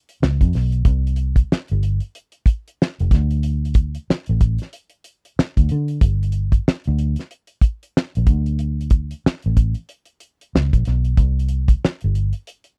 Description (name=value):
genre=R&B, neo-soul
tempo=93 BPM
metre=4/4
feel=swing 61% on 16ths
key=unclear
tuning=A4 = 440 Hz
part: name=cloth-damped thuddy drum kit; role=drums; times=0.1-12.8 s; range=hi-hat, kick drum, snare drum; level=-18 LUFS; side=equal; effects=none
part: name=vintage muted fingered electric bass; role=bass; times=0.2-12.3 s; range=F1 to D3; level=-21 LUFS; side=equal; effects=none
room=little or no reverb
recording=dry, close 1970s-style studio recording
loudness=-20 LUFS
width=mono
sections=0.0-12.8 A section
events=none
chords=none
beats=0.20 | 0.85 1.50 2.14 2.79 | 3.43 4.08 4.72 5.37 | 6.01 6.66 7.30 7.95 | 8.59 9.24 9.88 10.53 | 11.17 11.82 12.46